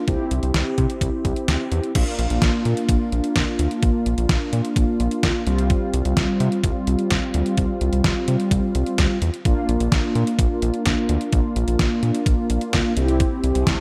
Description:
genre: synth-pop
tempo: 128 BPM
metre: 4/4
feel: straight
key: unclear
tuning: A4 = 439 Hz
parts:
  - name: mellow synth brass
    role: accompaniment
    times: 0.0-13.8 s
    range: G3 to G4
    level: -25 LUFS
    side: equal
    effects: chorus
  - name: round analog bass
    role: bass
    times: 0.1-13.8 s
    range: Bb1 to C3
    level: -24 LUFS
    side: equal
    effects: none
  - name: detuned 8-bit digital drum machine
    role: drums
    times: 0.1-13.8 s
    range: crash cymbal, hi-hat, kick drum, snare drum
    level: -24 LUFS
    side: equal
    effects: none
  - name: riser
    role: sound effects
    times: 13.4-13.8 s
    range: none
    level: -38 LUFS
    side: equal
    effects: none
room: moderate plate reverb, RT60 2.0 s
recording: dreamy mix soaked in reverb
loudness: -21 LUFS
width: mono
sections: 0.0-2.0 A section; 2.0-13.8 B section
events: none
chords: 0.1 C; 2.0 Bb; 5.5 Fsus2/C; 9.5 Bb; 13.0 C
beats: | 0.08 0.55 1.01 1.48 | 1.95 2.42 2.89 3.36 | 3.83 4.29 4.76 5.23 | 5.70 6.17 6.64 7.11 | 7.58 8.04 8.51 8.98 | 9.45 9.92 10.39 10.86 | 11.33 11.79 12.26 12.73 | 13.20 13.67

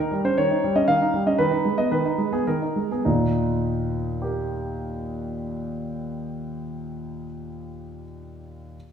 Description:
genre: classical-period piano sonatina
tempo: 99-119 BPM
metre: 3/4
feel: rubato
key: Eb major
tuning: A4 = 441 Hz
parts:
  - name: clear concert grand piano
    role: solo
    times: 0.0-8.8 s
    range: Eb2 to F5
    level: -23 LUFS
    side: right 1 dB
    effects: none
room: wet recital hall reverb, RT60 1.4 s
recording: heard from further back in the room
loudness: -22 LUFS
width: side -7 dB against mid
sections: 0.0-3.1 A section; 3.1-6.5 B section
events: slowing down 0.0-3.1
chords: 0.0 Eb7; 1.4 Abm/Eb; 3.1 Eb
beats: 0.36 0.86 | 1.38 1.91 2.46 | 3.06 3.63 4.21 | 4.80 5.38 5.96

